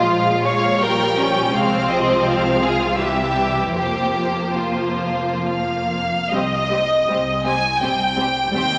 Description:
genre	classical, slow romantic movement for string orchestra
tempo	62-85 BPM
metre	3/4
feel	rubato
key	F minor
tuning	A4 = 440 Hz
part	clear studio violin section	melody	0.0-8.8 s	C5 to Ab5	-24 LUFS	equal	none
part	clear studio violin section	second line	0.0-8.6 s	C4 to Db5	-24 LUFS	equal	none
part	warm studio viola section	accompaniment	0.0-8.6 s	E3 to C4	-26 LUFS	equal	none
part	rich studio double bass section	bass	0.0-8.8 s	F1 to Eb2	-32 LUFS	equal	none
part	warm studio cello section	bass	0.0-8.8 s	C2 to C3	-32 LUFS	equal	none
room	wet scoring stage reverb, RT60 1.9 s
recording	none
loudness	-19 LUFS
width	mono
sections	0.0-6.3 A section; 6.3-8.8 B section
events	none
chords	0.0 Bb5; 1.5 Fm/C; 3.0 C; 3.8 F5; 6.3 Cm

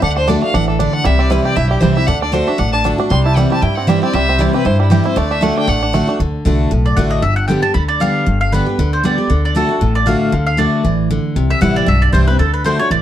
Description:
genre	bluegrass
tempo	233 BPM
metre	4/4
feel	swing 55% on 8ths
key	D mixolydian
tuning	A4 = 441 Hz
part	bluegrass banjo	melody	0.0-6.2 s	G3 to G4	-19 LUFS	right 5 dB	none
part	clear fiddle	second line	0.0-6.1 s	E4 to C6	-20 LUFS	left 2 dB	none
part	picked steel-string acoustic guitar	accompaniment	0.0-13.0 s	G2 to G4	-16 LUFS	equal	none
part	upright bass	bass	0.0-13.0 s	G1 to G2	-17 LUFS	equal	none
part	mandolin	melody	6.9-13.0 s	A4 to B5	-18 LUFS	right 1 dB	none
room	light reverb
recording	dark, warm production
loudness	-12 LUFS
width	side -11 dB against mid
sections	0.0-6.2 A section; 6.2-13.0 A section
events	fiddle solo 0.0-6.2; mandolin solo 6.2-13.0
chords	0.0 D; 1.1 C; 2.1 D; 3.1 C; 5.2 D; 7.2 G; 9.3 D; 11.4 C; 12.4 D

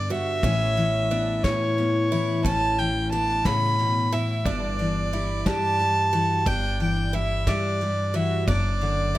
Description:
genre	acoustic folk duo or small band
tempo	60 BPM (dotted quarters)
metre	6/8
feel	straight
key	unclear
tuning	A4 = 440 Hz
part	warm fiddle	melody	0.0-9.2 s	C#5 to B5	-25 LUFS	right 1 dB	none
part	fingerpicked steel-string acoustic guitar	accompaniment	0.0-9.2 s	F#2 to G4	-28 LUFS	left 3 dB	none
part	picked twelve-string acoustic guitar	arpeggios	0.0-9.2 s	C#4 to F#4	-33 LUFS	right 4 dB	none
part	upright bass	bass	0.0-9.2 s	F#1 to A2	-27 LUFS	equal	none
part	soft brush drum kit	drums	0.1-9.2 s	kick drum, ride cymbal, snare drum	-30 LUFS	equal	none
room	little or no reverb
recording	close, detailed microphones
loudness	-21 LUFS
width	side -15 dB against mid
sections	0.0-9.2 A section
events	none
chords	0.4 Aadd9; 4.5 Em7/G; 8.5 D/F#

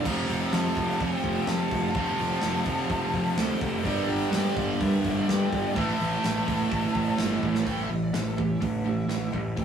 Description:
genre	hard rock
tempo	126 BPM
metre	4/4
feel	straight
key	A phrygian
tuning	A4 = 444 Hz
part	bluesy overdriven lead guitar	melody	0.0-9.6 s	D4 to Bb5	-34 LUFS	left 2 dB	distortion
part	dark smooth lead guitar	second line	0.0-7.2 s	A4 to G5	-38 LUFS	right 3 dB	overdrive
part	cranked stack guitar	riff	0.0-9.6 s	F2 to A3	-30 LUFS	right 7 dB	overdrive
part	scooped high-gain guitar	riff	0.0-7.7 s	F2 to E4	-36 LUFS	equal	distortion
part	tight distorted guitar	riff	0.0-9.6 s	F2 to A3	-33 LUFS	left 5 dB	distortion
part	fuzz picked electric bass	bass	0.1-9.6 s	F1 to G2	-29 LUFS	equal	overdrive
part	big rock drum kit	drums	0.1-9.6 s	crash cymbal, hi-hat, kick drum, snare drum	-32 LUFS	equal	none
room	moderate small room ambience, RT60 0.5 s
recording	rough rehearsal-room recording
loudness	-24 LUFS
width	side -8 dB against mid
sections	0.0-7.7 A section; 7.7-9.6 B section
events	drum fill 7.4; lead electric guitar solo 7.7-9.6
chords	0.1 F; 3.9 Gm; 5.8 Am; 7.7 A5

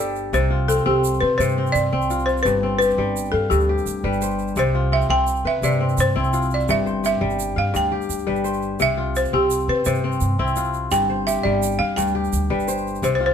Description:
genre	west african traditional, West African string and xylophone music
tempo	113 BPM (dotted quarters)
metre	12/8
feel	straight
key	C major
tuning	A4 = 442 Hz
part	balafon	melody	0.0-13.3 s	G4 to G5	-21 LUFS	equal	none
part	kora	arpeggios	0.0-13.3 s	G2 to F5	-22 LUFS	left 2 dB	none
part	upright bass	bass	0.0-13.3 s	G1 to C3	-25 LUFS	right 1 dB	none
part	egg shaker	percussion	0.2-13.1 s	none	-33 LUFS	right 9 dB	none
room	moderate stone room reverb, RT60 1.1 s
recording	band playing live in one room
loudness	-18 LUFS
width	side -8 dB against mid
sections	0.3-13.3 A section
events	none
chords	0.3 C5; 2.5 G; 4.6 C; 6.7 G; 8.8 C; 10.9 G

